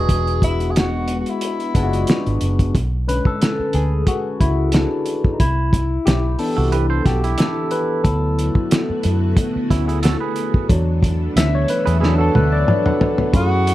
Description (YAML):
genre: lush 1970s-style soul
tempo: 91 BPM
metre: 4/4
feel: swing 54% on 16ths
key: unclear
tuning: A4 = 440 Hz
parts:
  - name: warm tenor saxophone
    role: melody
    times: 0.0-2.4, 13.4-13.7 s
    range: E4 to G#4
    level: -24 LUFS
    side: right 1 dB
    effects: none
  - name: barky tine electric piano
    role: accompaniment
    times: 0.0-13.7 s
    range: D3 to F#5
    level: -21 LUFS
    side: left 2 dB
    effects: overdrive, phaser
  - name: vintage muted fingered electric bass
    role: bass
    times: 0.0-13.7 s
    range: E1 to F#2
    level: -19 LUFS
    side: equal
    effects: none
  - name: cloth-damped thuddy drum kit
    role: drums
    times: 0.1-13.7 s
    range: hi-hat, kick drum, snare drum, toms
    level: -19 LUFS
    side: equal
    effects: none
  - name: clean electric guitar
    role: riff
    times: 6.6-13.1 s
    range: C#4 to C5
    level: -26 LUFS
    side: right 8 dB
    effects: none
  - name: string machine, full ensemble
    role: sustained chords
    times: 8.1-13.7 s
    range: D3 to A4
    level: -27 LUFS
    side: right 1 dB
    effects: ensemble chorus
room: light reverb, studio ambience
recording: dark, warm production, faint mains hum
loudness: -16 LUFS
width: side -15 dB against mid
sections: 0.0-2.7 A section; 2.7-13.3 B section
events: tine electric piano solo 2.7-13.3; drum fill 12.0-13.3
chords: 0.0 E9; 2.7 Bm69; 5.4 Cmaj7; 8.0 D6